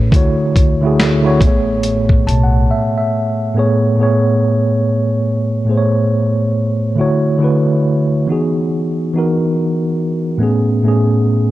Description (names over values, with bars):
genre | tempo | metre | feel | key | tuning
lo-fi hip hop | 70 BPM | 4/4 | swing 61% on 16ths | A major | A4 = 441 Hz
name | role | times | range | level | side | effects
mellow tine electric piano | accompaniment | 0.0-11.5 s | A2 to A5 | -13 LUFS | equal | fast stereo tremolo, low-pass filter
upright bass | bass | 0.0-2.7 s | A1 to D2 | -18 LUFS | equal | none
dusty soul sampler-style drum kit | drums | 0.1-2.5 s | hi-hat, kick drum, snare drum | -13 LUFS | equal | none
room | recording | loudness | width
light reverb | cassette tape | -12 LUFS | side -15 dB against mid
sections
0.0-3.6 A section; 3.6-11.5 B section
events
tine electric piano fill 1.8-3.6; break 2.7-3.6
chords
0.1 Dmaj9; 1.4 Amaj9; 7.0 Dmaj9; 8.3 Emaj9; 10.4 Amaj9